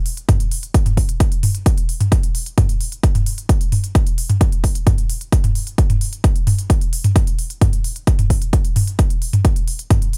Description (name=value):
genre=techno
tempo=131 BPM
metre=4/4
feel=straight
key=none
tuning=none
part: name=techno drum kit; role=drums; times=0.1-10.2 s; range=hi-hat, toms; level=-23 LUFS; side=equal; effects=none
part: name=electronic kick drum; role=drums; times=0.3-10.0 s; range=none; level=-18 LUFS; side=equal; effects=none
room=little or no reverb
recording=bright 1980s-style digital production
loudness=-17 LUFS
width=mono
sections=0.0-10.2 A section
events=none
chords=none